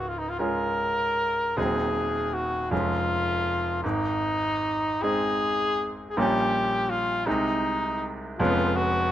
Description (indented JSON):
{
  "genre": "classical, romantic duo for trumpet and grand piano",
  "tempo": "53 BPM (dotted quarters)",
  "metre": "6/8",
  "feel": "uneven beats, rubato",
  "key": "unclear",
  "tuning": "A4 = 441 Hz",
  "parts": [
    { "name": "clear trumpet", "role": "melody", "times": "0.0-9.1 s", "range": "Eb4 to Bb4", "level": "-26 LUFS", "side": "left 1 dB", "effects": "none" },
    { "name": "bright concert grand piano", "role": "accompaniment", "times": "0.0-9.1 s", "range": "Db1 to F4", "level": "-28 LUFS", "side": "right 1 dB", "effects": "none" }
  ],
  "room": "light reverb",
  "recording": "close, detailed microphones",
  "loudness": "-23 LUFS",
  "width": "side -12 dB against mid",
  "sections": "0.0-9.1 A section",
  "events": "none",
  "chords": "0.0 Db; 1.6 Cdim/Eb; 2.7 Db/F; 3.8 Ab; 6.2 Gdim/Bb; 7.3 Ab/C; 8.4 C#7/E#"
}